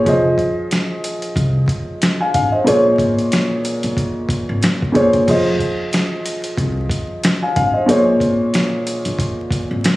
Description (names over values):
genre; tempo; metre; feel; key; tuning
hip hop, boom-bap hip-hop; 92 BPM; 4/4; swing 57% on 16ths; unclear; A4 = 445 Hz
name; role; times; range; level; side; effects
dark upright piano; accompaniment; 0.0-10.0 s; Bb2 to Ab5; -17 LUFS; equal; cassette tape, high-pass filter, low-pass filter
upright bass; bass; 0.1-9.8 s; F1 to C2; -22 LUFS; equal; none
dusty soul sampler-style drum kit; drums; 0.1-10.0 s; crash cymbal, hi-hat, kick drum, snare drum; -19 LUFS; equal; none
room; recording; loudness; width
small room reverb; recorded on a phone in the room, studio reverb, vinyl crackle; -15 LUFS; side -18 dB against mid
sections
0.0-5.3 A section; 5.3-10.0 A section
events
none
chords
0.1 Fm7; 2.7 Bbm7; 5.3 Fm7; 7.9 Bbm7